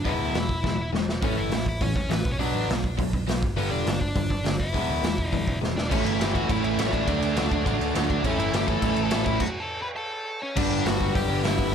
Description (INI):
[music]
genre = punk rock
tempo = 205 BPM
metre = 4/4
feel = straight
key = unclear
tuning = A4 = 438 Hz
[part]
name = dark smooth lead guitar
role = melody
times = 0.0-11.7 s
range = B3 to B5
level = -31 LUFS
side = equal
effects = overdrive, digital delay
[part]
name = overdriven electric guitar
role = riff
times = 0.0-11.7 s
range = G2 to F#4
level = -30 LUFS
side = left 14 dB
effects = none
[part]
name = raw garage guitar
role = riff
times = 0.0-11.7 s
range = E2 to D4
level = -30 LUFS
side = right 13 dB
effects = overdrive
[part]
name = overdriven picked electric bass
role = bass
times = 0.0-11.7 s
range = E1 to D2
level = -30 LUFS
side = equal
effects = none
[part]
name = raw garage drum kit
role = drums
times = 0.1-11.7 s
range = crash cymbal, hi-hat, kick drum, snare drum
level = -28 LUFS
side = equal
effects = none
[part]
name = crunchy overdriven guitar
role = riff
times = 5.9-11.7 s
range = G2 to A4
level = -31 LUFS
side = equal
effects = none
[sound]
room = little or no reverb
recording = none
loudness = -23 LUFS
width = side -7 dB against mid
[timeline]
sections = 0.0-5.9 A section; 5.9-10.6 B section; 10.6-11.7 C section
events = drum fill 0.6-1.2, 5.6; stop 9.4-10.6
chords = 0.1 E; 1.2 A; 2.2 Bm; 3.4 G; 4.7 E; 5.9 A; 7.1 D; 8.2 A; 9.4 F#m; 10.6 G